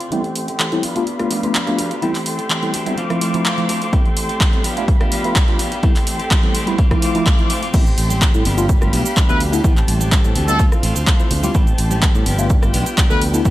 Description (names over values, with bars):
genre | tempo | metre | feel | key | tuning
filtered disco house | 126 BPM | 4/4 | straight | A minor | A4 = 436 Hz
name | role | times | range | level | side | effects
muted studio string section | sustained chords | 0.0-13.5 s | D4 to D6 | -27 LUFS | equal | vintage 12-bit sampler grit, sidechain pumping, low-pass filter
clean electric guitar | riff | 0.0-13.5 s | E3 to G4 | -25 LUFS | left 1 dB | sidechain pumping, low-pass filter
punchy analog drum machine | drums | 0.0-13.5 s | cabasa, crash cymbal, handclaps, hi-hat, rim click | -22 LUFS | right 1 dB | overdrive, sidechain pumping on hats, studio reverb, sidechain pumping on cymbals, sidechain pumping on perc
mellow tine electric piano | accompaniment | 0.1-13.5 s | F3 to C5 | -22 LUFS | left 1 dB | medium stereo tremolo, phaser, vintage 12-bit sampler grit, sidechain pumping, low-pass filter
modern bright fingered electric bass | bass | 0.1-13.5 s | G1 to A2 | -23 LUFS | equal | sidechain pumping, high-pass filter, low-pass filter
electronic kick drum | drums | 3.9-13.5 s | none | -16 LUFS | equal | overdrive, studio reverb
tambourine and congas | percussion | 7.7-13.5 s | none | -29 LUFS | right 3 dB | none
brilliant trumpet section | melody | 9.3-13.2 s | A4 to B4 | -23 LUFS | equal | vintage 12-bit sampler grit, sidechain pumping, low-pass filter, dub echo
room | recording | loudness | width
light reverb | none | -14 LUFS | side -15 dB against mid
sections
0.1-7.7 A section; 7.7-13.5 B section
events
build-up 0.1-7.7; filter sweep 0.1-7.7; drop 7.7-13.5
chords
0.1 Am7; 0.8 G7; 2.0 Am7; 3.0 Dm7; 3.9 Am7; 4.6 G7; 5.8 Am7; 6.8 Dm7; 7.7 Am7; 8.5 G7; 9.6 Am7; 10.6 Dm7; 11.5 Am7; 12.3 G7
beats
| 0.12 0.60 1.07 1.55 | 2.02 2.50 2.98 3.45 | 3.93 4.41 4.88 5.36 | 5.83 6.31 6.79 7.26 | 7.74 8.21 8.69 9.17 | 9.64 10.12 10.60 11.07 | 11.55 12.02 12.50 12.98 | 13.45